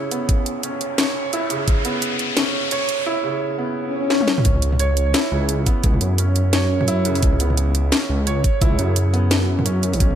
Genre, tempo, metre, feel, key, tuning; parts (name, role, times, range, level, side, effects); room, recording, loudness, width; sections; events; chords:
half-time drum and bass; 173 BPM; 4/4; swing 60% on 16ths, half-time; C# minor; A4 = 440 Hz
felt-muted upright piano; arpeggios; 0.0-10.2 s; C#3 to C#5; -24 LUFS; right 3 dB; tape echo
riser and swell; sound effects; 0.5-4.5 s; -26 LUFS; left 4 dB
drum and bass drum kit; drums; 0.1-10.2 s; hi-hat, snare drum, toms; -22 LUFS; left 1 dB; overdrive
electronic kick drum; drums; 0.3-1.8, 4.5-10.1 s; -18 LUFS; equal
dark detuned saw bass; bass; 4.5-10.2 s; G#1 to F#2; -19 LUFS; equal
light reverb; -17 LUFS; side -10 dB against mid
0.0-4.5 A section; 4.5-10.2 B section
build-up 0.0-4.5; riser 0.5-3.1; swell 3.8-4.5; drum fill 4.1-4.5; drop 4.5-10.2
0.0 C#m7; 4.5 C#m